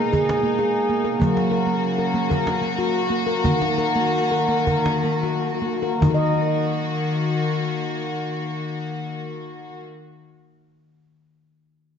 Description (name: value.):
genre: world meditative, meditative tuned percussion.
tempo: 146-195 BPM (eighths).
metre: 7/8.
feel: straight.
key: Eb minor pentatonic.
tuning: A4 = 436 Hz.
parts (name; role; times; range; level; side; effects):
clear studio string section; sustained chords; 0.0-9.8 s; Cb3 to Gb4; -24 LUFS; left 2 dB; none.
handpan; arpeggios; 0.0-9.9 s; Eb3 to Eb5; -22 LUFS; equal; diffuse ambient delay.
cajon; percussion; 0.1-6.4 s; none; -24 LUFS; right 1 dB; none.
room: wet concert hall reverb, RT60 1.8 s, studio reverb.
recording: dark, warm production, nothing above 7.8 kHz.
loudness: -20 LUFS.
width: side -7 dB against mid.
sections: 0.0-6.0 A section; 6.0-11.8 B section.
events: slowing down 1.2-6.0.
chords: 0.0 Abm; 1.2 Gb; 3.4 Ebm.